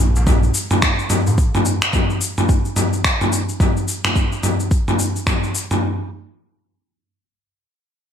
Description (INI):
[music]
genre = organic downtempo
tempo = 108 BPM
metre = 4/4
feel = swing 60% on 16ths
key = unclear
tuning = A4 = 440 Hz
[part]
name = round analog bass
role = bass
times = 0.0-0.5 s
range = A#1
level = -16 LUFS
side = equal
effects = sidechain pumping
[part]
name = dusty soul sampler-style drum kit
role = drums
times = 0.2-5.8 s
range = cabasa, finger snaps, toms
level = -18 LUFS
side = left 1 dB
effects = gated reverb
[part]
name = darbuka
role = percussion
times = 0.2-1.4 s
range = none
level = -25 LUFS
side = equal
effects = none
[part]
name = electronic kick drum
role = drums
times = 0.3-5.4 s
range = none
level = -18 LUFS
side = equal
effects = none
[sound]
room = little or no reverb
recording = bright 1980s-style digital production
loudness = -16 LUFS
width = side -8 dB against mid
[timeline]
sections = 0.0-5.8 A section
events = none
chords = none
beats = 0.27 0.82 | 1.38 1.93 2.49 3.04 | 3.60 4.15 4.71 5.26